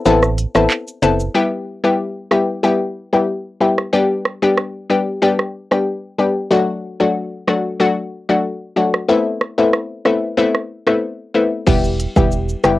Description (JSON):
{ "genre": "dancehall", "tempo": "93 BPM", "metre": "4/4", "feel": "straight", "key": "E minor", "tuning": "A4 = 440 Hz", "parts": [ { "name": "analog pluck", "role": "accompaniment", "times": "0.0-12.8 s", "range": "F#3 to A4", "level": "-16 LUFS", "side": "left 2 dB", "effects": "chorus, sidechain pumping, cassette tape" }, { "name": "organ-like FM bass", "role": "bass", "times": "0.1-1.3, 11.7-12.8 s", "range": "E1 to A1", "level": "-19 LUFS", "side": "right 2 dB", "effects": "none" }, { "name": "afro-pop drum kit", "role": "drums", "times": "0.1-12.8 s", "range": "crash cymbal, handclaps, hi-hat, kick drum, rim click, shaker", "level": "-18 LUFS", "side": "right 2 dB", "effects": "cassette tape" } ], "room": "light reverb", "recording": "home recording on cassette", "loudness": "-15 LUFS", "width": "side -16 dB against mid", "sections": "0.0-1.3 A section; 1.3-11.7 B section; 11.7-12.8 A section", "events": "break 0.1-1.3; kick muted 10.4-11.7", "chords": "0.0 Amadd9; 1.3 Em; 3.9 G; 6.5 D; 9.1 Amadd9; 11.7 Em" }